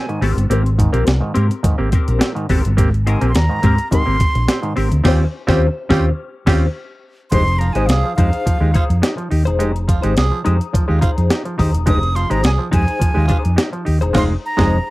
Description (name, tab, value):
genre	funk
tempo	106 BPM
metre	4/4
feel	straight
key	F minor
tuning	A4 = 440 Hz
part	breathy concert flute	melody	0.0-14.9 s	F5 to Eb6	-22 LUFS	right 1 dB	slapback echo
part	mellow clav	stabs	0.0-14.8 s	Ab2 to G4	-22 LUFS	right 1 dB	none
part	clean electric guitar	accompaniment	0.1-14.8 s	C4 to C5	-25 LUFS	left 5 dB	wah, spring reverb
part	breakbeat sampler-style drum kit	drums	0.1-14.7 s	crash cymbal, hi-hat, kick drum, snare drum	-17 LUFS	equal	none
part	hollow-body short-scale fingered electric bass	bass	0.2-14.8 s	E1 to Ab2	-16 LUFS	equal	none
part	growling tenor saxophone	second line	5.0-14.7 s	F4 to Ab4	-25 LUFS	right 6 dB	none
room	little or no reverb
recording	dry, close 1970s-style studio recording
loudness	-14 LUFS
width	side -18 dB against mid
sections	0.0-7.3 A section; 7.3-14.9 B section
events	band accent 5.0-7.3, 14.2-14.9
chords	0.0 Abmaj9; 5.0 Eb13; 7.3 Fm7